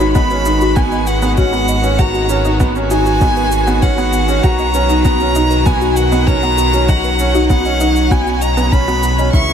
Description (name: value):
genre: piano and strings electronica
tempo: 98 BPM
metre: 4/4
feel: straight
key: unclear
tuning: A4 = 441 Hz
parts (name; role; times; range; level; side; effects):
- warm violin; melody; 0.0-9.5 s; F#5 to C#6; -18 LUFS; equal; analog delay
- rich string quartet; sustained chords; 0.0-9.5 s; C#3 to F#4; -21 LUFS; right 1 dB; stereo widening
- soft round pluck; arpeggios; 0.0-9.4 s; F#4 to F#5; -22 LUFS; left 2 dB; chorus, sidechain pumping, analog delay
- felt-muted upright piano; riff; 0.0-9.5 s; B3 to F#4; -18 LUFS; right 3 dB; analog delay
- round analog bass; bass; 0.0-9.5 s; G#1 to C#2; -18 LUFS; equal; sidechain pumping
- shaker; drums; 0.0-9.5 s; none; -31 LUFS; equal; none
- electronic kick drum; drums; 0.2-9.5 s; none; -14 LUFS; equal; none
room: moderate cathedral reverb, RT60 5.2 s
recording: dreamy mix soaked in reverb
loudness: -11 LUFS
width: side -8 dB against mid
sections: 0.0-9.5 A section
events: none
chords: 0.0 G#m7; 4.4 Bmaj7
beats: 0.15 0.76 1.38 | 1.99 2.60 3.21 3.83 | 4.44 5.05 5.66 6.27 | 6.89 7.50 8.11 8.72 | 9.34